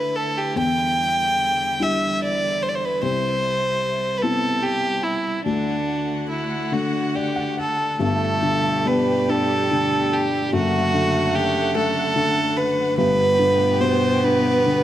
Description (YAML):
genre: celtic folk, Celtic slow air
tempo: 48 BPM (dotted quarters)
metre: 6/8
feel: rubato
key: unclear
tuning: A4 = 441 Hz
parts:
  - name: warm fiddle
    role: melody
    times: 0.0-14.8 s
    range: D4 to G5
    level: -21 LUFS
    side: right 1 dB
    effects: none
  - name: felt-muted upright piano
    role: accompaniment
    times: 0.0-14.8 s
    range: F#1 to F#5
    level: -23 LUFS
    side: left 3 dB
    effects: none
  - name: rich symphonic string section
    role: sustained chords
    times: 0.0-14.8 s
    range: F#2 to F#5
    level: -30 LUFS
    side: equal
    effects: none
  - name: warm bassoon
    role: second line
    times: 8.0-14.8 s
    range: G3 to B3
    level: -26 LUFS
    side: right 4 dB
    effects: none
room: moderate concert hall reverb, RT60 2.4 s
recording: none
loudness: -18 LUFS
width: side -12 dB against mid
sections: 0.0-8.0 A section; 8.0-14.8 B section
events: felt piano fill 6.7-8.0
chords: 0.0 Dsus2; 0.6 Em7; 3.0 Cmaj7; 5.5 D; 8.0 Gadd9; 10.5 D/F#; 13.0 Gadd9